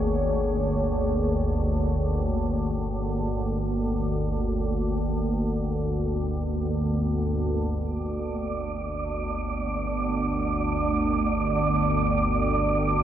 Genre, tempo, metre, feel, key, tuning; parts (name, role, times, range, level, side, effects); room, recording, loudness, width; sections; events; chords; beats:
ambient; free time; A4 = 443 Hz
deep dark ambient pad; sustained chords; 0.0-13.0 s; Bb3 to D5; -32 LUFS; left 1 dB; chorus, built-in reverb
organ-like drone; drone; 0.0-13.0 s; G1 to D2; -25 LUFS; equal; ensemble chorus, built-in reverb
wind-like tuned noise texture; texture; 8.1-13.0 s; D5; -28 LUFS; right 4 dB; built-in reverb
wet huge ambient reverb, RT60 7.0 s; worn, warbling old tape, cassette tape, warbly pitch drift; -24 LUFS; side -10 dB against mid
0.0-7.8 A section; 7.8-13.0 B section
0.0 Bbm7; 7.8 Gm
free time